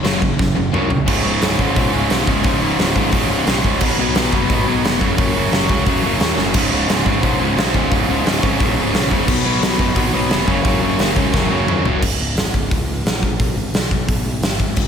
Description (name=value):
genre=punk rock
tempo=176 BPM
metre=4/4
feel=straight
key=unclear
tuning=A4 = 440 Hz
part: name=distorted electric guitar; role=riff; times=0.0-12.0 s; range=Db2 to Cb4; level=-20 LUFS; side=right 9 dB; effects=overdrive, slapback echo
part: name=overdriven electric guitar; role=riff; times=0.0-12.0 s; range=Db2 to Cb4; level=-20 LUFS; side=left 9 dB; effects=slapback echo
part: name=fuzz picked electric bass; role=bass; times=0.0-14.9 s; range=Db1 to Eb2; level=-24 LUFS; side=equal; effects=overdrive
part: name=big rock drum kit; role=drums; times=0.0-14.8 s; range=crash cymbal, hi-hat, kick drum, snare drum, splash cymbal, toms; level=-18 LUFS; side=equal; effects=none
room=light reverb, studio reverb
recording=none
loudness=-14 LUFS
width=side -7 dB against mid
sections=0.0-1.1 A section; 1.1-12.0 B section; 12.0-14.9 A section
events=drum fill 0.4-1.1, 6.4, 11.3-12.0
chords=0.0 Gb5; 1.1 Db5; 3.8 Cb5; 5.0 Gb5; 6.5 Db5; 9.3 Cb5; 10.5 Gb5; 12.0 Db5; 13.4 G